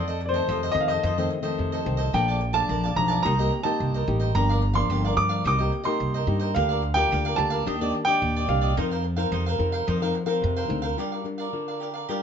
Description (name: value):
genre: samba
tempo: 109 BPM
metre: 4/4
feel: straight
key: unclear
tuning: A4 = 440 Hz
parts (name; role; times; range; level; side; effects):
- warm grand piano; melody; 0.0-10.4 s; C5 to D6; -26 LUFS; right 1 dB; plate reverb
- cavaquinho; accompaniment; 0.0-12.2 s; D4 to A5; -30 LUFS; right 2 dB; none
- nylon-string guitar; accompaniment; 0.0-12.2 s; F2 to Bb4; -29 LUFS; left 4 dB; none
- upright bass; bass; 0.0-10.9 s; G1 to G2; -26 LUFS; right 1 dB; none
room: moderate studio reverb, RT60 0.6 s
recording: nothing above 7.6 kHz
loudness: -22 LUFS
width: side -7 dB against mid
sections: 0.0-11.0 A section; 11.0-12.2 B section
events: none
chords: 0.0 F7; 2.1 Bbmaj7; 3.2 Cm7; 4.3 Gm7; 5.5 Cm7; 6.6 Gm7/D; 7.7 Ebmaj7; 8.8 F7sus4; 11.0 Gm7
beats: 0.48 1.03 1.58 | 2.14 2.69 3.24 3.80 | 4.35 4.90 5.45 6.00 | 6.56 7.11 7.66 8.21 | 8.77 9.32 9.87 10.42 | 10.97 11.53 12.08